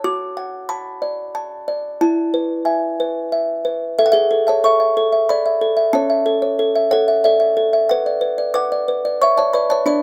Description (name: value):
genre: classical, lullaby for music box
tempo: 92 BPM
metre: 3/4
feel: straight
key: A major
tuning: A4 = 441 Hz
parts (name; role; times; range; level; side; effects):
- music box; solo; 0.0-10.0 s; C#4 to D6; -18 LUFS; equal; none
room: moderate spring reverb, RT60 1.2 s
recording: none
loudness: -18 LUFS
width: mono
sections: 0.0-4.0 A section; 4.0-10.0 B section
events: none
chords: 0.0 D/F#; 2.0 E; 4.0 A; 5.9 A/C#; 7.9 Bm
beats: | 0.04 0.70 1.35 | 2.01 2.67 3.33 | 3.98 4.64 5.29 | 5.95 6.60 7.25 | 7.90 8.56 9.21 | 9.86